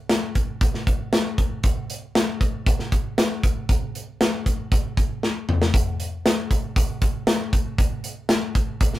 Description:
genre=rock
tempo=117 BPM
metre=4/4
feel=straight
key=none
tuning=none
part: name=big rock drum kit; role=drums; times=0.1-9.0 s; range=hi-hat, kick drum, snare drum, toms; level=-20 LUFS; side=equal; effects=none
room=light reverb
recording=rough rehearsal-room recording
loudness=-20 LUFS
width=side -15 dB against mid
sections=0.0-9.0 A section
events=drum fill 5.2-5.7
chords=none

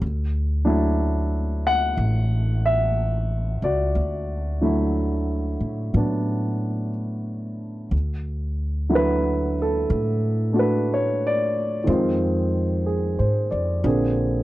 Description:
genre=jazz ballad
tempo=61 BPM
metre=4/4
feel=swing 66% on 8ths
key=D major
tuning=A4 = 440 Hz
part: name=warm grand piano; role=accompaniment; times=0.0-14.4 s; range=D3 to F#5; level=-23 LUFS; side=equal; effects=none
part: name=upright bass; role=bass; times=0.0-14.4 s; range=A1 to A2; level=-24 LUFS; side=equal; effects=none
room=light reverb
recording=dry, close 1970s-style studio recording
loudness=-20 LUFS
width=side -16 dB against mid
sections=0.0-7.9 A section; 7.9-14.4 B section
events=none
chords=0.0 Dadd9; 11.9 Fm7; 13.8 Bb9

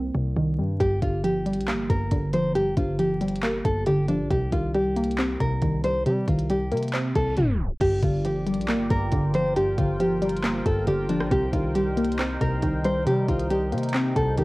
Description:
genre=hip hop, trap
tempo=137 BPM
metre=4/4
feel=half-time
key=G minor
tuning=A4 = 437 Hz
part: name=warbly dusty pluck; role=accompaniment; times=0.0-14.4 s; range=G2 to C4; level=-25 LUFS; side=equal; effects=chorus
part: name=distorted 808-style bass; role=bass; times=0.0-14.4 s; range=G1 to G3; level=-30 LUFS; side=equal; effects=distortion
part: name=nylon-string guitar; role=melody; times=0.8-14.4 s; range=D4 to C5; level=-26 LUFS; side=equal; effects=cassette tape, tape echo
part: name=glitchy drum kit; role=drums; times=0.8-14.4 s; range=crash cymbal, handclaps, hi-hat, kick drum, rim click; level=-28 LUFS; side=equal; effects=overdrive, cassette tape
part: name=reverse cymbal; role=sound effects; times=7.2-7.8 s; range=none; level=-46 LUFS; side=right 4 dB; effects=none
part: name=sweeping resonant pad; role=sustained chords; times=8.1-14.4 s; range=Eb4 to G5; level=-35 LUFS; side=right 1 dB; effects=chorus, phaser
room=light reverb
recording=home recording on cassette, vinyl crackle, tape stop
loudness=-22 LUFS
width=side -21 dB against mid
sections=0.0-7.8 A section; 7.8-14.4 B section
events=break 0.0-0.8; reverse cymbal 7.2-7.8; tape stop 7.4-7.8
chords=0.0 Cm7; 0.8 Gm7; 4.3 Cm7; 7.8 Gm7; 11.3 Cm7

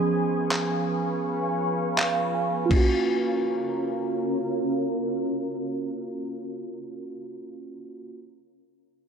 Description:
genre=contemporary R&B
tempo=82 BPM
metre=4/4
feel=straight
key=F# major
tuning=A4 = 436 Hz
part: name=muted felt-like synth keys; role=accompaniment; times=0.0-8.2 s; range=E#3 to G#5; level=-27 LUFS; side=right 3 dB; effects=chorus, low-pass filter
part: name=granular cloud pad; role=sustained chords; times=0.0-6.4 s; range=C#4 to C#6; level=-30 LUFS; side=left 1 dB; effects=built-in reverb, sidechain pumping, low-pass filter
part: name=dusty soul sampler-style drum kit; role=drums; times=0.5-2.9 s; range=crash cymbal, handclaps, kick drum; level=-26 LUFS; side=left 1 dB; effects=vintage 12-bit sampler grit
room=light reverb, digital ambience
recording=none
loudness=-24 LUFS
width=side -6 dB against mid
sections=0.0-2.7 A section; 2.7-5.6 B section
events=synth keys fill 1.6-2.7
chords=0.0 C#7; 2.7 F#maj7

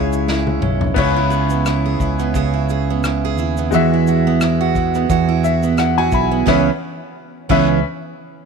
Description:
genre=acoustic pop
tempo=87 BPM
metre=4/4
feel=swing 55% on 16ths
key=C# minor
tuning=A4 = 441 Hz
part: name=fingerpicked steel-string acoustic guitar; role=melody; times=0.0-0.6 s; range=E4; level=-31 LUFS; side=left 2 dB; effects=none
part: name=bright upright piano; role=accompaniment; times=0.0-7.8 s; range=G#3 to B5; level=-21 LUFS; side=left 12 dB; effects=none
part: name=picked steel-string acoustic guitar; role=accompaniment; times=0.0-7.8 s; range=C#3 to G#4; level=-18 LUFS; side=right 10 dB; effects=none
part: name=fingered electric bass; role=bass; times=0.0-7.8 s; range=B1 to E2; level=-20 LUFS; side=left 1 dB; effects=none
part: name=unplugged drum kit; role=drums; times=0.1-7.7 s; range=crash cymbal, kick drum, rim click, shaker, snare drum, toms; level=-24 LUFS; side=left 2 dB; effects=none
room=light reverb, small room ambience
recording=1960s-style stereo with parts hard left and right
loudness=-14 LUFS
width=side -5 dB against mid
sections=1.0-6.5 A section; 6.5-8.5 B section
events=drum fill 0.3-1.0; upright piano fill 5.1-6.5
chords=0.0 C#m; 1.0 C#m7; 3.7 Eadd9; 6.5 C#m7

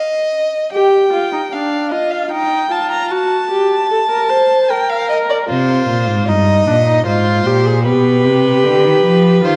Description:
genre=classical, baroque-style fugue for string quartet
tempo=76 BPM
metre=3/4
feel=straight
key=unclear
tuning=A4 = 440 Hz
part: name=rich violin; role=second line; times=0.0-9.6 s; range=B4 to Bb5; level=-19 LUFS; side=equal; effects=none
part: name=warm viola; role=accompaniment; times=0.7-9.6 s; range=D4 to C5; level=-18 LUFS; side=equal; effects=none
part: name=rich cello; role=bass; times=5.5-9.6 s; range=G2 to F3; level=-16 LUFS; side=equal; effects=none
room=wet concert hall reverb, RT60 1.9 s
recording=dark, warm production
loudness=-14 LUFS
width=mono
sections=0.0-9.6 A section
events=none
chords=0.0 N.C.; 0.7 G5; 2.3 Ebadd9; 3.1 F#dim; 4.7 Gm/Bb; 5.5 Cm; 7.1 Fm/Ab; 7.9 G7/B

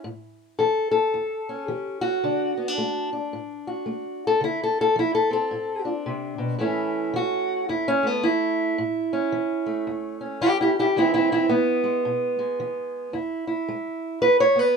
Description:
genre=acoustic country blues, solo or duo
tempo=110 BPM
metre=4/4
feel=swing 61% on 8ths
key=A major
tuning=A4 = 439 Hz
part: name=fingerpicked steel-string acoustic guitar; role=solo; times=0.0-14.8 s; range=E2 to C#5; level=-22 LUFS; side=equal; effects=none
room=light reverb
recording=minimal, uncompressed stereo recording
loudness=-22 LUFS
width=side -5 dB against mid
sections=0.0-14.8 A section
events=steel-string acoustic guitar solo 0.0-14.8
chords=0.0 A; 2.2 D; 4.4 Dm7; 6.6 A; 11.0 E

